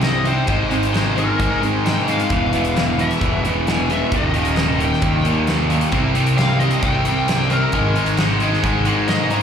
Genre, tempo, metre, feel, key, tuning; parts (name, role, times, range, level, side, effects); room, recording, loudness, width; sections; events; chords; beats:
quiet-loud alternative rock; 133 BPM; 4/4; straight; A4 = 440 Hz
high-gain lead guitar; melody; 0.0-9.4 s; Bb4 to Bb5; -25 LUFS; left 4 dB; distortion, slapback echo
picked steel-string acoustic guitar; arpeggios; 0.0-4.1 s; Eb3 to G4; -27 LUFS; right 3 dB; slapback echo
crunchy overdriven guitar; riff; 0.0-9.4 s; Eb2 to C4; -20 LUFS; equal; slapback echo
fuzz picked electric bass; bass; 0.0-9.4 s; Eb1 to Ab2; -21 LUFS; equal; overdrive
huge arena drum kit; drums; 0.0-9.4 s; hi-hat, kick drum, snare drum; -23 LUFS; equal
little or no reverb; live gig heard through the venue's PA, club reverb; -16 LUFS; side -8 dB against mid
0.0-9.4 A section
lead electric guitar solo 0.0-9.4
0.5 Ab; 2.3 E; 4.1 Eb; 5.9 C5; 7.7 Ab5
0.04 | 0.49 0.95 1.40 1.86 | 2.31 2.76 3.22 3.67 | 4.12 4.58 5.03 5.48 | 5.93 6.38 6.84 7.29 | 7.74 8.19 8.65 9.10